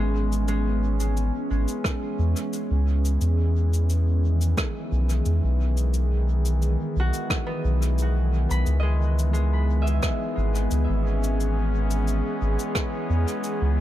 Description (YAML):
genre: ambient dub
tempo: 88 BPM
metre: 4/4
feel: straight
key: C# minor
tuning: A4 = 442 Hz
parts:
  - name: warbly tape-like pad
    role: sustained chords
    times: 0.0-13.8 s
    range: D#3 to G#4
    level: -29 LUFS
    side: equal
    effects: chorus, built-in reverb
  - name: concert harp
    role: arpeggios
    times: 0.0-13.2 s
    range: G#3 to B5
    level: -34 LUFS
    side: equal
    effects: tape echo
  - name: soft dub sub bass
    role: bass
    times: 0.0-13.8 s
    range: G#1 to E2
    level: -22 LUFS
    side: equal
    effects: none
  - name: cabasa and rim click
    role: drums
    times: 0.3-13.6 s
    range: none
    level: -32 LUFS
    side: equal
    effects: dub echo
  - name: electronic kick drum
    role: drums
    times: 1.8-12.9 s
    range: none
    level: -28 LUFS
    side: equal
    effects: none
room: small room ambience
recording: dark, warm production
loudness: -21 LUFS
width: side -13 dB against mid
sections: 0.0-13.8 A section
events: none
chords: 0.0 C#m7; 3.2 Emaj7; 8.7 C#m7